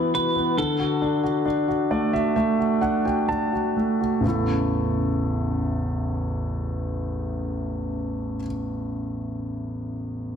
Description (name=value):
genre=pop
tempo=62-70 BPM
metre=4/4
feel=straight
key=A major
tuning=A4 = 445 Hz
part: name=semi-hollow electric guitar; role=melody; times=0.0-3.3 s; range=A4 to B4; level=-27 LUFS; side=right 1 dB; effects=ping-pong delay
part: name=clear concert grand piano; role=accompaniment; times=0.0-10.4 s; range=A1 to A5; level=-23 LUFS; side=equal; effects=none
room=moderate concert hall reverb, RT60 1.9 s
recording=dense, heavily limited modern master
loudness=-22 LUFS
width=side -7 dB against mid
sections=0.0-4.2 A section; 4.2-8.1 B section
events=slowing down 0.0-4.2; grand piano fill 1.5-4.2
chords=0.0 Esus2; 0.6 D; 4.2 A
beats=| 0.57 1.46 2.36 3.29 | 4.25 5.21 6.17 7.14